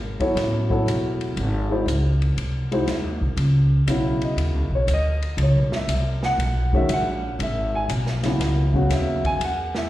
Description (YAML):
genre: modal jazz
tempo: 119 BPM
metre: 4/4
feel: swing 68% on 8ths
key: C# dorian from 3.4 s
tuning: A4 = 439 Hz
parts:
  - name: upright bass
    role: bass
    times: 0.0-9.9 s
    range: E1 to E2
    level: -22 LUFS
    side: equal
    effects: none
  - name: dark baby grand piano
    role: accompaniment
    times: 0.2-9.9 s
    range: C#3 to G#5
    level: -24 LUFS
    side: equal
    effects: slapback echo
  - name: open jazz drum kit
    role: drums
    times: 0.2-9.8 s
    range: hi-hat, kick drum, ride cymbal, snare drum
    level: -30 LUFS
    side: equal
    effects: none
room: light reverb, small room ambience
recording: live gig heard through the venue's PA, recital hall reverb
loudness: -20 LUFS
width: side -15 dB against mid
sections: 0.0-3.4 A section; 3.4-9.9 B section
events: none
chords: 0.0 B9sus4; 1.4 G#7b13; 3.4 C#m9